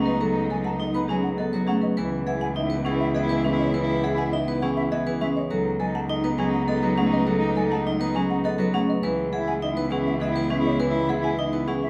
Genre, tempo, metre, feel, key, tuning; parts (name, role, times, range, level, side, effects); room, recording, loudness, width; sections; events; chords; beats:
classical, minimalist pattern music; 102 BPM; 3/4; straight; C# minor; A4 = 440 Hz
marimba with medium hard mallets; melody; 0.0-11.9 s; G#4 to F#5; -33 LUFS; equal
warm soprano saxophone; second line; 0.0-11.9 s; D#4 to E4; -33 LUFS; equal
Celtic harp; accompaniment; 0.0-11.9 s; E3 to B3; -30 LUFS; equal
warm studio string section; sustained chords; 0.0-11.9 s; B3 to E4; -36 LUFS; equal
vibraphone with hard mallets; arpeggios; 0.0-11.9 s; C#4 to B4; -32 LUFS; equal
rich cello; bass; 0.0-11.9 s; C#2; -32 LUFS; equal
mellow hollow silver concert flute; arpeggios; 0.1-11.9 s; D#5 to B5; -35 LUFS; equal
wet large studio reverb, RT60 1.2 s; heard from further back in the room; -24 LUFS; mono
0.0-11.9 A section
0.0 B13/C#; 2.0 C#m11; 5.5 B13/C#; 9.0 C#m11
| 0.21 0.80 1.39 | 1.98 2.56 3.15 | 3.74 4.33 4.92 | 5.50 6.09 6.68 | 7.27 7.86 8.45 | 9.03 9.62 10.21 | 10.80 11.39